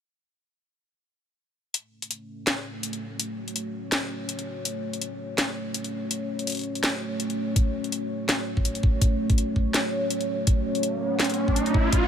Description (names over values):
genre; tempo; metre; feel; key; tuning
half-time drum and bass; 165 BPM; 4/4; swing 55% on 16ths, half-time; F# minor; A4 = 440 Hz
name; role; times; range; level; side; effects
deep dark ambient pad; sustained chords; 2.3-12.1 s; A3 to C#5; -29 LUFS; equal; chorus, built-in reverb, sidechain pumping
drum and bass drum kit; drums; 1.7-12.0 s; hi-hat, snare drum; -27 LUFS; left 1 dB; none
electronic kick drum; drums; 7.6-12.0 s; none; -21 LUFS; equal; none
riser; sound effects; 10.8-12.1 s; none; -28 LUFS; right 2 dB; none
room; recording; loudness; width
light reverb, digital ambience; none; -24 LUFS; side -8 dB against mid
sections
1.7-12.1 A section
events
riser 10.8-12.1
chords
1.7 F#m